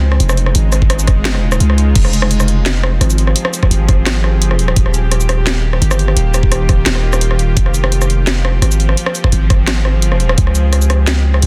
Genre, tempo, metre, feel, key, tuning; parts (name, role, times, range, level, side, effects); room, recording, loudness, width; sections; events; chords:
half-time drum and bass; 171 BPM; 4/4; half-time; F minor; A4 = 440 Hz
bowed-like drone; sustained chords; 0.0-11.5 s; Db3 to Ab4; -24 LUFS; equal; built-in reverb, sidechain pumping
long sustained 808-style bass; bass; 0.0-11.5 s; Eb1 to Db2; -15 LUFS; equal
drum and bass drum kit; drums; 0.1-11.5 s; crash cymbal, hi-hat, rim click, shaker, snare drum; -21 LUFS; equal; soft clipping on snare
electronic kick drum; drums; 0.8-10.4 s; -15 LUFS; equal
little or no reverb; dense, heavily limited modern master; -13 LUFS; mono
0.0-11.5 A section
0.0 Db; 2.0 Fm; 4.8 Eb; 7.6 Fm; 10.4 Db